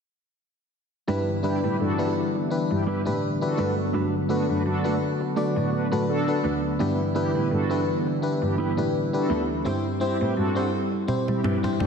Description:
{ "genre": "1980s-style pop", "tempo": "84 BPM", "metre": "4/4", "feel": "swing 55% on 16ths", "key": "G major", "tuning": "A4 = 439 Hz", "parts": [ { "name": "FM electric piano", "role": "accompaniment", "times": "1.1-11.9 s", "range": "C4 to G5", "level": "-27 LUFS", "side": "left 3 dB", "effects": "chorus, slapback echo" }, { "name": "brassy analog pad", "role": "sustained chords", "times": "1.1-11.9 s", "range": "D3 to F#4", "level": "-28 LUFS", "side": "right 1 dB", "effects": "chorus" }, { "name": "mellow electric guitar", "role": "riff", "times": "1.1-11.7 s", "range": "G3 to C5", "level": "-31 LUFS", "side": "right 4 dB", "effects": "wide subtle chorus, tape echo, slapback echo" }, { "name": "warm cello", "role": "bass", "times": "1.1-11.9 s", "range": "D2 to G3", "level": "-30 LUFS", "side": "equal", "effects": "none" }, { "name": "mellow synth brass", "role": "stabs", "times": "1.4-11.9 s", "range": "B3 to B4", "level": "-32 LUFS", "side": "equal", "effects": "chorus, tape echo, slapback echo" }, { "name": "toms", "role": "drums", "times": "11.1-11.9 s", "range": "none", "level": "-27 LUFS", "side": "right 1 dB", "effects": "none" } ], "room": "wet lush hall reverb, RT60 2.3 s", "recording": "big arena sound", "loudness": "-22 LUFS", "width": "side -6 dB against mid", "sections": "1.1-11.9 A section", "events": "drum fill 11.1-11.9", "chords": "1.1 G6; 3.6 Bm7; 6.8 G6; 9.7 C/G" }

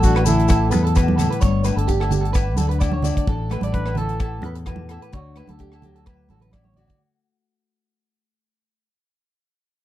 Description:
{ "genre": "highlife guitar band", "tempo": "129 BPM", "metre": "4/4", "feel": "swing 54% on 16ths", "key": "D major", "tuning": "A4 = 440 Hz", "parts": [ { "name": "breathy trumpet", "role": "melody", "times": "0.0-0.7, 3.7-4.4 s", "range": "E4 to B4", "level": "-26 LUFS", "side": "equal", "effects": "none" }, { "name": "nylon-string guitar", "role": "accompaniment", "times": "0.0-8.9 s", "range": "G2 to A4", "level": "-26 LUFS", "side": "left 6 dB", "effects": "none" }, { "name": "electric guitar at the edge of break-up", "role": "arpeggios", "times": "0.0-7.0 s", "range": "G4 to D5", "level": "-27 LUFS", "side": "right 5 dB", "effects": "slapback echo" }, { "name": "fingered electric bass", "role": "bass", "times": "0.0-6.8 s", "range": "G1 to E2", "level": "-22 LUFS", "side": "equal", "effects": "none" }, { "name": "tight funk drum kit", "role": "drums", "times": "0.0-7.0 s", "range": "hi-hat, kick drum, rim click", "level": "-21 LUFS", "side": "equal", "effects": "none" }, { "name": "maracas", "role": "percussion", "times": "0.0-3.2 s", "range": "none", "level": "-34 LUFS", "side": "left 25 dB", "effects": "none" }, { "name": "agogo bells", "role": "percussion", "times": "0.1-6.9 s", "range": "none", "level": "-34 LUFS", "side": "left 6 dB", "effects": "none" }, { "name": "congas", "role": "percussion", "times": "0.3-7.0 s", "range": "none", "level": "-26 LUFS", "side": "right 4 dB", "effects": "none" } ], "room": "little or no reverb", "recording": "dry, close 1970s-style studio recording", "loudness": "-17 LUFS", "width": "side -14 dB against mid", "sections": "0.0-7.0 A section", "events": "fade-out 0.0-7.0; trumpet solo 0.0-7.0; drum fill 6.5-7.0", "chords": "0.0 Asus4; 1.4 Gadd9; 3.3 Asus4; 5.1 D" }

